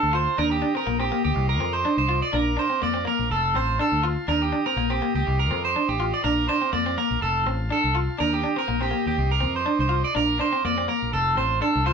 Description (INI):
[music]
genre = highlife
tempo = 123 BPM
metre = 4/4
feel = swing 53% on 16ths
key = Bb major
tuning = A4 = 443 Hz
[part]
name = electric guitar at the edge of break-up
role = accompaniment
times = 0.0-11.9 s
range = Bb3 to F4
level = -26 LUFS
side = left 1 dB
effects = none
[part]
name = combo organ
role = sustained chords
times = 0.0-11.9 s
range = Eb5 to Eb6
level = -35 LUFS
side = left 1 dB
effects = spring reverb
[part]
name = electric guitar at the edge of break-up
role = arpeggios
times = 0.0-11.9 s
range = G4 to D5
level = -24 LUFS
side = right 4 dB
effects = none
[part]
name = fingered electric bass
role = bass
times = 0.0-11.9 s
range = F1 to F2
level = -27 LUFS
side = left 1 dB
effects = none
[sound]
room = wet studio ambience, RT60 0.4 s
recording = band playing live in one room, nothing above 10.5 kHz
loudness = -21 LUFS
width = side -6 dB against mid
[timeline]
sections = 0.0-11.9 A section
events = none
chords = 0.4 Eb; 1.4 Cmadd9; 2.3 Bb; 3.3 F; 4.3 Eb; 5.3 Cmadd9; 6.2 Bb; 7.2 F; 8.2 Eb; 9.2 Cmadd9; 10.2 Bb; 11.1 F